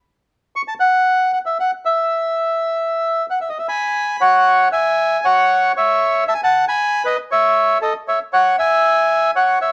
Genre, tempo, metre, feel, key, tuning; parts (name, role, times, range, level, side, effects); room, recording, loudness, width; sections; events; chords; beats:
tango; 117 BPM; 4/4; rubato; E major, C# minor from 4.2 s; A4 = 439 Hz
bandoneon; solo; 0.6-9.7 s; A4 to C#6; -17 LUFS; equal
moderate studio reverb, RT60 0.8 s; -17 LUFS; mono
0.0-4.2 A section; 4.2-9.7 B section
0.0 N.C.; 4.2 C#m; 6.3 A; 8.3 C#madd11
| 0.04 0.56 1.07 1.59 | 2.10 2.62 3.14 3.67 | 4.19 4.71 5.23 5.75 | 6.27 6.78 7.29 7.81 | 8.32 8.83 9.34